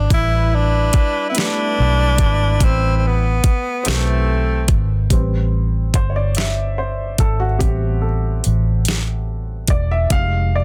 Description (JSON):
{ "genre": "slow six-eight R&B", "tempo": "48 BPM (dotted quarters)", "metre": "6/8", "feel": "straight", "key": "A minor", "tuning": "A4 = 440 Hz", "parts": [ { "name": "breathy tenor saxophone", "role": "melody", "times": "0.0-4.8 s", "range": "A3 to E4", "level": "-23 LUFS", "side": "equal", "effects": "plate reverb, delay" }, { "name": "warm baby grand piano", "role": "accompaniment", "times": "0.0-10.6 s", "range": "G3 to F5", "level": "-28 LUFS", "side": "equal", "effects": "plate reverb" }, { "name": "vintage muted fingered electric bass", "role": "bass", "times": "0.0-10.6 s", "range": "E1 to B1", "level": "-20 LUFS", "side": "equal", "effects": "none" }, { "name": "warm horn section", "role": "stabs", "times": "0.1-4.7 s", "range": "E3 to B4", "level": "-29 LUFS", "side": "equal", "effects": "plate reverb, delay" }, { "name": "smooth R&B drum kit", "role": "drums", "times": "0.1-10.3 s", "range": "hi-hat, kick drum, snare drum", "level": "-19 LUFS", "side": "equal", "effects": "none" } ], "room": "little or no reverb", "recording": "dense, heavily limited modern master", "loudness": "-18 LUFS", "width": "mono", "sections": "0.0-5.1 A section; 5.1-10.6 B section", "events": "grand piano solo 5.1-10.6", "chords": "0.0 Am9; 10.1 Fm9" }